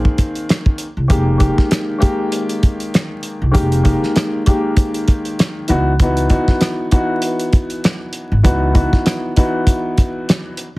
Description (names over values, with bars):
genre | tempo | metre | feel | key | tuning
hip hop, boom-bap hip-hop | 98 BPM | 4/4 | swing 56% on 16ths | unclear | A4 = 440 Hz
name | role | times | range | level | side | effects
dark upright piano | accompaniment | 0.0-10.6 s | Eb3 to Ab4 | -19 LUFS | left 1 dB | cassette tape, high-pass filter, low-pass filter, plate reverb
upright bass | bass | 0.0-10.8 s | F1 to Db2 | -16 LUFS | equal | none
cloth-damped thuddy drum kit | drums | 0.1-10.7 s | hi-hat, kick drum, rim click, snare drum | -14 LUFS | equal | none
room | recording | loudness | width
light reverb | heavily compressed radio sound, vinyl crackle | -14 LUFS | side -21 dB against mid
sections
0.0-1.1 A section; 1.1-10.8 B section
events
none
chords
0.0 Bb9sus4; 1.1 Fm11; 5.7 Dbm11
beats
0.49 | 1.10 1.71 2.32 2.94 | 3.55 4.16 4.77 5.38 | 6.00 6.61 7.22 7.83 | 8.45 9.06 9.67 10.28